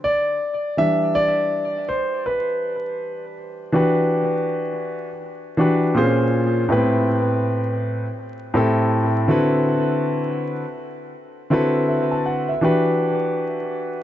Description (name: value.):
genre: hip hop.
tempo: 81 BPM.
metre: 4/4.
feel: swing 61% on 16ths.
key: E minor.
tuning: A4 = 439 Hz.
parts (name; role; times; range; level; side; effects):
warm concert grand piano; solo; 0.0-14.0 s; A2 to A5; -19 LUFS; equal; tape echo.
room: light reverb, small room ambience.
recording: dark, warm production, vinyl crackle, nothing above 7.9 kHz.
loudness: -18 LUFS.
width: side -12 dB against mid.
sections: 0.0-3.7 A section; 3.7-14.0 B section.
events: grand piano solo 0.0-3.7.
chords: 0.0 D; 0.8 Em7; 3.7 Em9; 6.0 A#m9; 6.7 Am9; 9.3 D13; 12.6 Em9.